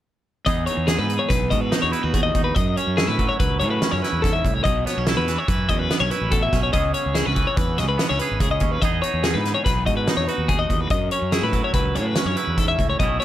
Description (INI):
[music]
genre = math rock and midwest emo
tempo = 144 BPM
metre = 5/4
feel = straight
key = E major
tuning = A4 = 439 Hz
[part]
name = twangy electric guitar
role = accompaniment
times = 0.5-13.2 s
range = E2 to G#4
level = -27 LUFS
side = right 8 dB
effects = none
[part]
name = twelve-string electric guitar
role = arpeggios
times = 0.5-13.2 s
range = G#4 to E5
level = -24 LUFS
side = left 5 dB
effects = none
[part]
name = fuzz fingered electric bass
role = bass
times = 0.5-13.2 s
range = G#1 to A2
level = -25 LUFS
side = equal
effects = overdrive
[part]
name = loose indie drum kit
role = drums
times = 0.5-13.2 s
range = hi-hat, kick drum, snare drum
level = -24 LUFS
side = equal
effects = none
[sound]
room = little or no reverb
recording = none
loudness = -19 LUFS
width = side -12 dB against mid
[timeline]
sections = 0.5-13.2 A section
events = none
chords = 0.5 Emaj7; 2.6 F#m9; 4.6 B9sus4; 6.7 Emaj13; 8.8 Emaj7; 10.9 F#m9